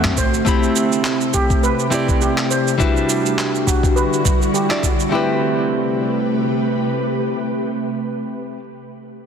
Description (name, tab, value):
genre	sunset chillout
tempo	103 BPM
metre	4/4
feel	swing 56% on 16ths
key	A dorian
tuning	A4 = 442 Hz
part	nylon-string guitar	accompaniment	0.0-8.6 s	G3 to B5	-21 LUFS	moving between left 5 dB and right 3 dB	auto-pan, low-pass filter, tape echo
part	ethereal airy pad	sustained chords	0.0-8.2 s	C3 to B4	-22 LUFS	equal	ensemble chorus, built-in reverb
part	steel pan	arpeggios	0.0-5.4 s	F#4 to C5	-25 LUFS	right 3 dB	low-pass filter, tape echo
part	electronic handclaps and cabasa	drums	0.0-5.1 s	none	-24 LUFS	right 3 dB	none
part	electronic kick drum	drums	0.2-5.0 s	none	-18 LUFS	equal	none
room	moderate lush hall reverb, RT60 2.2 s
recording	dense, heavily limited modern master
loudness	-16 LUFS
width	side -7 dB against mid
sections	0.0-5.1 A section; 5.1-7.5 B section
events	filter sweep on steel pan 0.0-5.1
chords	0.2 Am9; 2.8 Em9; 5.1 Am9